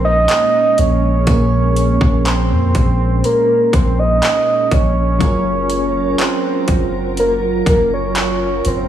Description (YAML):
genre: contemporary R&B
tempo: 61 BPM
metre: 4/4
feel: straight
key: Bb minor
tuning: A4 = 441 Hz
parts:
  - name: soft octave-layered synth lead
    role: melody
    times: 0.0-8.9 s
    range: Bb4 to Eb5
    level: -16 LUFS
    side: right 1 dB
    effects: chorus, digital delay
  - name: FM electric piano with auto-pan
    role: accompaniment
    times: 0.0-8.9 s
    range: Bb2 to Bb4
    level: -23 LUFS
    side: left 1 dB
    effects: phaser
  - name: glassy FM pad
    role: sustained chords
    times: 0.0-8.9 s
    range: Gb3 to Bb4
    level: -22 LUFS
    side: right 2 dB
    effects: ensemble chorus, built-in reverb
  - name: long sustained 808-style bass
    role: bass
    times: 0.0-8.9 s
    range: Gb1 to F2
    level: -18 LUFS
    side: equal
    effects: none
  - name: impact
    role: sound effects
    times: 0.0-1.3 s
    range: none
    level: barely audible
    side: none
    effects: none
  - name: trap drum kit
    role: drums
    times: 0.3-8.9 s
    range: handclaps, hi-hat, kick drum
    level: -18 LUFS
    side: equal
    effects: overdrive
room: light reverb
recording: studio reverb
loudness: -12 LUFS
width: side -10 dB against mid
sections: 0.0-8.9 A section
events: impact 0.0-1.3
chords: 0.0 Bbm7; 5.2 Gbmaj7